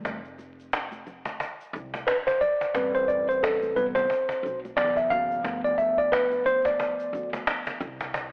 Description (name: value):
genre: hip hop, jazz-hop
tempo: 89 BPM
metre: 4/4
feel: swing 58% on 16ths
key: unclear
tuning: A4 = 440 Hz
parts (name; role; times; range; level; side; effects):
- mellow tine electric piano; accompaniment; 0.0-7.8 s; C3 to F5; -26 LUFS; equal; none
- upright bass; bass; 0.0-8.3 s; F1 to D2; -44 LUFS; equal; none
- cajon; drums; 0.0-8.3 s; none; -34 LUFS; equal; vintage 12-bit sampler grit
- tube shaker and congas; percussion; 0.1-8.3 s; none; -48 LUFS; equal; none
room: moderate plate reverb, RT60 2.5 s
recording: vinyl crackle, telephone sound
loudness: -26 LUFS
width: mono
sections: 0.0-8.3 A section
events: tine electric piano solo 0.0-8.3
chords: 0.0 F5; 2.7 Am9; 4.8 D13; 5.4 G7; 7.8 N.C.